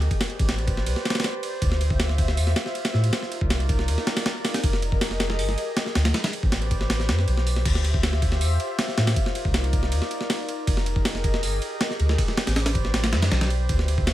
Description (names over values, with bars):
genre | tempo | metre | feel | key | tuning
drum and bass, jungle | 159 BPM | 4/4 | straight | D minor | A4 = 440 Hz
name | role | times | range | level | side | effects
warbly tape-like pad | sustained chords | 0.0-14.1 s | Eb4 to E5 | -30 LUFS | left 1 dB | chorus, built-in reverb
soft dub sub bass | bass | 0.0-14.1 s | F1 to A2 | -23 LUFS | equal | none
breakbeat sampler-style drum kit | drums | 0.0-14.1 s | crash cymbal, hi-hat, kick drum, ride cymbal, snare drum | -24 LUFS | equal | none
room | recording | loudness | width
little or no reverb | vinyl crackle | -21 LUFS | side -14 dB against mid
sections
0.0-7.7 A section; 7.7-14.1 A section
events
drop 0.0-7.7, 7.7-14.1; kick drops out 6.9-7.7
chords
0.1 Am11; 1.6 Dm11; 3.1 Cm11; 4.6 Fm11; 6.1 Am11; 7.7 Dm11; 9.2 Cm11; 10.7 Fm11; 12.2 Am11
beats
| 0.11 0.49 0.86 1.24 | 1.62 2.00 2.37 2.75 | 3.13 3.50 3.88 4.26 | 4.64 5.01 5.39 5.77 | 6.15 6.52 6.90 7.28 | 7.66 8.03 8.41 8.79 | 9.16 9.54 9.92 10.30 | 10.67 11.05 11.43 11.81 | 12.18 12.56 12.94 13.32 | 13.69 14.07